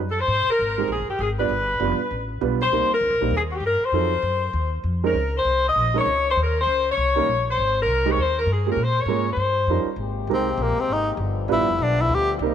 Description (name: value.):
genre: jazz, big band swing.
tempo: 198 BPM.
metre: 4/4.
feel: swing 63% on 8ths.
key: Ab major.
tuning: A4 = 440 Hz.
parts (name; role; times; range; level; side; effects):
upright bass; bass; 0.0-12.5 s; F1 to Bb2; -26 LUFS; left 1 dB; none.
clear saxophone section; melody; 0.1-9.9 s; Gb4 to Eb5; -21 LUFS; left 2 dB; none.
warm baby grand piano; accompaniment; 0.8-12.5 s; Gb3 to D5; -27 LUFS; right 11 dB; none.
clear trombone section; sustained chords; 10.0-12.5 s; C3 to G4; -30 LUFS; left 12 dB; none.
clear tenor saxophone; melody; 10.3-12.3 s; Bb3 to G4; -22 LUFS; left 1 dB; none.
room: moderate plate reverb, RT60 2.4 s.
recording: 1960s-style stereo with parts hard left and right.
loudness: -19 LUFS.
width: side -9 dB against mid.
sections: 0.3-10.0 A section; 10.0-12.5 B section.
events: tenor saxophone solo 10.0-12.5.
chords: 0.3 Abmaj7sus2; 1.5 G7; 2.7 Cm7; 3.9 F7b9; 5.1 Bbmadd9; 6.4 Eb7(no3); 7.6 Abmaj9; 8.8 Bbm7; 9.4 Eb9; 10.0 Abmaj9; 11.2 G7.